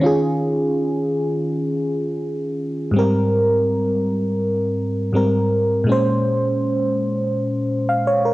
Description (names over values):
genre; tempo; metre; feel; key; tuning
R&B; 82 BPM; 4/4; straight; unclear; A4 = 441 Hz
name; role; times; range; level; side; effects
FM electric piano; solo; 0.0-8.3 s; Ab2 to F5; -18 LUFS; equal; chorus, cassette tape
room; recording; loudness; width
light reverb, digital ambience; home recording on cassette; -18 LUFS; side -18 dB against mid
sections
0.0-5.9 A section; 5.9-8.3 B section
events
none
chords
0.0 Eb9sus4; 2.9 Abmaj9; 5.9 Bbm9